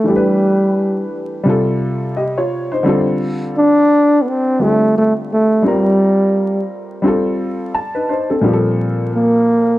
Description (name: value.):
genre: hip hop.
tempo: 86 BPM.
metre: 4/4.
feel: swing 59% on 16ths.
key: unclear.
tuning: A4 = 440 Hz.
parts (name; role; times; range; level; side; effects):
warm trombone; melody; 0.0-9.8 s; G3 to D4; -13 LUFS; equal; none.
warm upright piano; accompaniment; 0.0-9.8 s; Bb2 to A5; -17 LUFS; left 1 dB; none.
room: moderate studio reverb, RT60 0.5 s.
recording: dark, warm production, vinyl crackle.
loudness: -13 LUFS.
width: side -16 dB against mid.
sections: 0.0-9.8 A section.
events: upright piano fill 7.4-8.4.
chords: 0.1 Em7; 1.5 Cmadd11; 2.9 Dm7; 5.7 C5; 7.0 Fadd9; 8.4 Bbsus2.